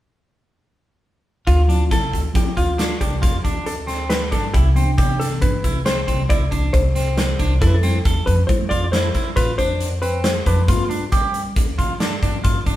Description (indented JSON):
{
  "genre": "progressive instrumental, band music in an uneven meter",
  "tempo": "137 BPM",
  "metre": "7/4",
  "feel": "straight",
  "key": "D dorian",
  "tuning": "A4 = 445 Hz",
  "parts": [
    { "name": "hollow-body jazz guitar", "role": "melody", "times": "1.5-12.2 s", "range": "F4 to D5", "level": "-25 LUFS", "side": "left 1 dB", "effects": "none" },
    { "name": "electric guitar at the edge of break-up", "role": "arpeggios", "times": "1.5-12.8 s", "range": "C4 to A4", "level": "-26 LUFS", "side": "right 1 dB", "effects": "phaser" },
    { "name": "upright bass", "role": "bass", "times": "1.5-12.8 s", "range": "C2 to G3", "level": "-20 LUFS", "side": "equal", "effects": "none" },
    { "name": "big rock drum kit", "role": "drums", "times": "1.5-12.8 s", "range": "hi-hat, kick drum, snare drum", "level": "-21 LUFS", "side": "equal", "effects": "none" },
    { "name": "mellow tine electric piano", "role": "accompaniment", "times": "1.7-11.0 s", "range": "E3 to F4", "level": "-27 LUFS", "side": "left 1 dB", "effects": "medium stereo tremolo" }
  ],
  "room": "moderate stone room reverb, RT60 1.1 s",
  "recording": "band playing live in one room",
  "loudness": "-16 LUFS",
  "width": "side -14 dB against mid",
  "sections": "1.5-12.8 A section",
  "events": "none",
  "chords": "1.5 Dm7; 4.5 Cmaj7; 7.6 Fmaj7; 10.7 G7",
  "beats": "| 1.47 1.91 2.35 2.79 3.22 3.66 4.10 | 4.54 4.98 5.42 5.86 6.29 6.73 7.17 | 7.61 8.05 8.49 8.93 9.37 9.81 10.24 | 10.68 11.12 11.56 12.00 12.44"
}